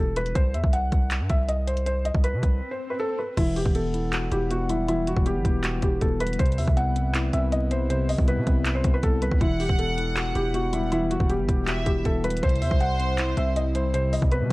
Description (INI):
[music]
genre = hip hop, trap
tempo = 159 BPM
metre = 4/4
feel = half-time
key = E minor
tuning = A4 = 440 Hz
[part]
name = felt-muted upright piano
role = melody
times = 0.0-14.5 s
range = E4 to F#5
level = -28 LUFS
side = equal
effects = none
[part]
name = mellow tine electric piano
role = accompaniment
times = 0.0-0.4, 3.4-14.5 s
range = C3 to F#4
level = -29 LUFS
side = left 1 dB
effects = medium stereo tremolo
[part]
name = distorted 808-style bass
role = bass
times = 0.0-14.5 s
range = E1 to C3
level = -27 LUFS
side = equal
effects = distortion
[part]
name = trap drum kit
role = drums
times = 0.2-14.5 s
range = crash cymbal, handclaps, hi-hat, kick drum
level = -25 LUFS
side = equal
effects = vintage 12-bit sampler grit
[part]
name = swell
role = sound effects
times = 2.4-3.4 s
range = none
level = -39 LUFS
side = right 1 dB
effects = none
[part]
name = warm brass ensemble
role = sustained chords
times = 3.4-14.5 s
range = C3 to F#5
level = -37 LUFS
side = left 1 dB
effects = none
[part]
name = warm studio violin section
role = second line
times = 9.4-13.9 s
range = C5 to F#5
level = -33 LUFS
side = right 1 dB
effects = tape echo
[sound]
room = little or no reverb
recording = vinyl crackle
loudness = -22 LUFS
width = side -21 dB against mid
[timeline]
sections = 0.0-3.4 A section; 3.4-14.5 B section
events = break 0.0-3.4; swell 2.4-3.4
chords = 0.4 Cmaj7(no3); 3.4 Emadd9; 6.4 Cmaj7; 9.4 Emadd9; 12.4 C